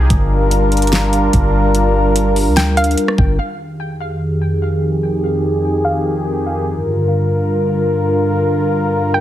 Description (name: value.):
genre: hip hop, atmospheric cloud-rap.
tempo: 146 BPM.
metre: 4/4.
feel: half-time.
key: F dorian.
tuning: A4 = 440 Hz.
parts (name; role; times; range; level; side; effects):
hollow square pluck; melody; 0.0-0.1, 2.6-3.4, 5.8-6.6, 9.1-9.2 s; F5 to G5; -22 LUFS; right 1 dB; chorus, low-pass filter, tape echo.
sweeping resonant pad; sustained chords; 0.0-9.2 s; F2 to Bb4; -15 LUFS; equal; wide subtle chorus, sidechain pumping, low-pass filter.
soft 808-style bass; bass; 0.0-3.4 s; G1 to D2; -15 LUFS; equal; none.
smooth R&B drum kit; drums; 0.1-3.3 s; hi-hat, kick drum, rim click, snare drum; -17 LUFS; equal; none.
room: light reverb, digital ambience.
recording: heavily compressed radio sound.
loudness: -13 LUFS.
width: side -12 dB against mid.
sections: 0.0-3.4 A section; 3.4-9.2 B section.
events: none.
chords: 0.1 Gm7; 3.4 Fm9; 6.7 Gm7.